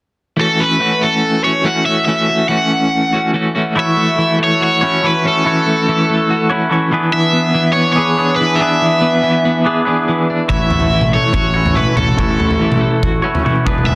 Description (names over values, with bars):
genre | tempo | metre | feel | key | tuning
indie rock | 142 BPM | 4/4 | straight | A major | A4 = 440 Hz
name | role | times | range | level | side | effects
cranked stack guitar | melody | 0.4-13.9 s | A4 to F#5 | -19 LUFS | equal | overdrive
twelve-string electric guitar | riff | 0.4-13.9 s | E3 to G#4 | -19 LUFS | equal | tremolo
twangy electric guitar | riff | 3.8-13.9 s | E3 to C#5 | -21 LUFS | equal | subtle chorus
fuzz fingered electric bass | bass | 10.5-13.9 s | E1 to A1 | -21 LUFS | equal | overdrive
loose indie drum kit | drums | 10.5-13.9 s | kick drum, toms | -20 LUFS | equal | none
room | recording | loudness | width
light reverb | dense, heavily limited modern master | -15 LUFS | mono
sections
0.4-3.8 A section; 3.8-13.9 B section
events
none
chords
0.4 A6; 6.9 E7; 10.5 A6